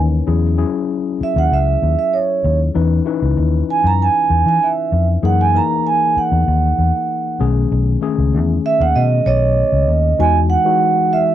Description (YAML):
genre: lush 1970s-style soul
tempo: 97 BPM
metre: 4/4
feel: straight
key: unclear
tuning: A4 = 440 Hz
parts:
  - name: tine electric piano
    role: accompaniment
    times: 0.0-11.3 s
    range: D#3 to C#5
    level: -21 LUFS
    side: left 9 dB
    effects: none
  - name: vintage muted fingered electric bass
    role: bass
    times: 0.0-10.6 s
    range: B1 to E3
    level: -15 LUFS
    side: left 1 dB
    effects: transformer saturation
  - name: vibraphone with medium mallets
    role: melody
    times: 1.2-11.3 s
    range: C#5 to A#5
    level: -16 LUFS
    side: right 6 dB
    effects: cassette tape
room: light reverb, studio reverb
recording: home recording on cassette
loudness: -13 LUFS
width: side -11 dB against mid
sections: 0.3-10.2 A section; 10.2-11.3 B section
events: none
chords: 0.3 E69; 2.8 C#m9; 5.2 F#13; 7.4 B13; 10.2 Emaj9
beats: | 0.27 0.89 1.51 2.13 | 2.75 3.37 3.99 4.61 | 5.23 5.85 6.47 7.10 | 7.72 8.34 8.96 9.58 | 10.20 10.81